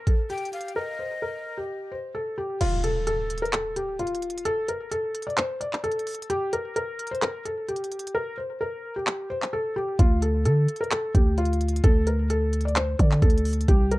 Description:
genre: hip hop, trap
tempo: 130 BPM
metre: 4/4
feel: half-time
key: D phrygian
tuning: A4 = 440 Hz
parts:
  - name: felt-muted upright piano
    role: melody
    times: 0.0-14.0 s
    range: F4 to D5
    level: -28 LUFS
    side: left 1 dB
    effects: low-pass filter
  - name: trap drum kit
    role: drums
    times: 0.1-14.0 s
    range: crash cymbal, handclaps, hi-hat, kick drum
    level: -23 LUFS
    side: equal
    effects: overdrive, vintage 12-bit sampler grit
  - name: breathy hollow jazz flute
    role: second line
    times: 0.3-1.6 s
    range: Eb5 to G5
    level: -35 LUFS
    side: left 2 dB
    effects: ping-pong delay
  - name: impact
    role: sound effects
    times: 2.6-4.5 s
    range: none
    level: -30 LUFS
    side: equal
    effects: none
  - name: growling 808-style bass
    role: bass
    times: 10.0-14.0 s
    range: C2 to D3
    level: -22 LUFS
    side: equal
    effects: none
room: little or no reverb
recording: dark, warm production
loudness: -23 LUFS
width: side -19 dB against mid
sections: 0.0-2.6 A section; 2.6-14.0 B section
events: break 0.8-2.6; kick muted 2.6-10.0; impact 2.6-4.5; hi-hats muted 8.1-10.0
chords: 0.0 N.C.; 10.0 D5

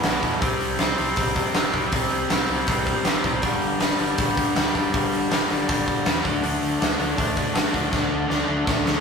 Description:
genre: punk rock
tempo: 160 BPM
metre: 4/4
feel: straight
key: unclear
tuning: A4 = 438 Hz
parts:
  - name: biting overdriven guitar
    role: riff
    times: 0.0-9.0 s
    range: E2 to D4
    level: -26 LUFS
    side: left 6 dB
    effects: none
  - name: biting overdriven guitar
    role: riff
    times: 0.0-9.0 s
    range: E2 to D4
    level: -26 LUFS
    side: right 5 dB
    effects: none
  - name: growling picked electric bass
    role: bass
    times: 0.0-8.9 s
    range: E1 to E2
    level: -32 LUFS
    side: equal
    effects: overdrive
  - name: big rock drum kit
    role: drums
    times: 0.0-8.9 s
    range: hi-hat, kick drum, snare drum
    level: -23 LUFS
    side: equal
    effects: none
room: moderate studio reverb, RT60 0.6 s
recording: rough rehearsal-room recording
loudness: -20 LUFS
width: side -5 dB against mid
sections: 0.0-9.0 A section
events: drum fill 7.9-9.0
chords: 0.4 C5; 3.4 G5; 6.2 D5

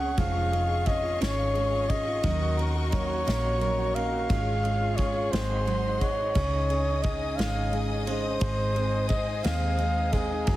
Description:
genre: six-eight pop ballad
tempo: 58 BPM (dotted quarters)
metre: 6/8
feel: straight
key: Db major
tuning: A4 = 442 Hz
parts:
  - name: mellow flugelhorn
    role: melody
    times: 0.0-10.6 s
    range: Ab4 to Gb5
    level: -29 LUFS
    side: equal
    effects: digital delay
  - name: bright grand piano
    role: accompaniment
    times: 0.0-10.6 s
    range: Db3 to Bb4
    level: -34 LUFS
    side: right 1 dB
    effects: none
  - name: rich studio string section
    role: sustained chords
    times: 0.0-10.6 s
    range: Db4 to Eb6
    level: -37 LUFS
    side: left 3 dB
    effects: none
  - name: picked steel-string acoustic guitar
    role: arpeggios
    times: 0.0-10.6 s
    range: F2 to Bb4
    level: -36 LUFS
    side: right 4 dB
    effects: digital delay
  - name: vintage muted fingered electric bass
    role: bass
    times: 0.0-10.6 s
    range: F1 to Eb2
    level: -29 LUFS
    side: equal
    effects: none
  - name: unplugged drum kit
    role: drums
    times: 0.2-10.6 s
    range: kick drum, ride cymbal, snare drum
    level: -32 LUFS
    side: equal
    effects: none
room: light reverb, small room ambience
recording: heavily compressed radio sound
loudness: -24 LUFS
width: side -15 dB against mid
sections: 0.0-10.6 A section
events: none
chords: 0.2 Dbadd9/F; 2.2 Ebm7; 4.3 Db/Ab; 5.3 Ab7; 6.4 Dbsus2; 8.4 Ab

